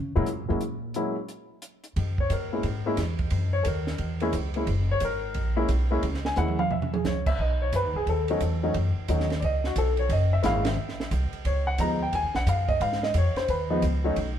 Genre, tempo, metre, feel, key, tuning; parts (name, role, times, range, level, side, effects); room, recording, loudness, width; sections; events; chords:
jazz piano trio; 177 BPM; 4/4; swing 64% on 8ths; F# mixolydian; A4 = 440 Hz
upright bass; bass; 0.0-14.4 s; F#1 to C#3; -27 LUFS; equal
warm baby grand piano; melody; 0.2-14.2 s; E#3 to A#5; -27 LUFS; left 1 dB; plate reverb
compact cocktail drum kit; drums; 0.3-14.3 s; crash cymbal, hi-hat, kick drum, ride cymbal, snare drum, toms; -33 LUFS; right 3 dB
moderate club reverb, RT60 0.8 s; heard from further back in the room; -24 LUFS; side -9 dB against mid
0.0-2.0 A section; 2.0-14.4 B section
upright bass solo 0.0-2.0; drum fill 6.4-7.0; band accent 10.6
0.0 F#9; 1.3 N.C.; 2.0 F#9; 7.4 B9; 10.1 F#9; 11.4 C#9